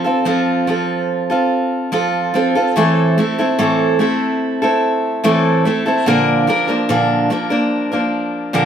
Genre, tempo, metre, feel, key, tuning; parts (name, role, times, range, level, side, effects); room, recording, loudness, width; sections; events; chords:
pop; 72 BPM; 4/4; straight; A4 = 441 Hz
picked steel-string acoustic guitar; solo; 0.0-8.7 s; A2 to Bb4; -14 LUFS; right 1 dB
wet large studio reverb, RT60 1.1 s; band playing live in one room; -14 LUFS; side -8 dB against mid
0.0-8.7 A section
0.0 F; 2.8 Am; 6.1 Bb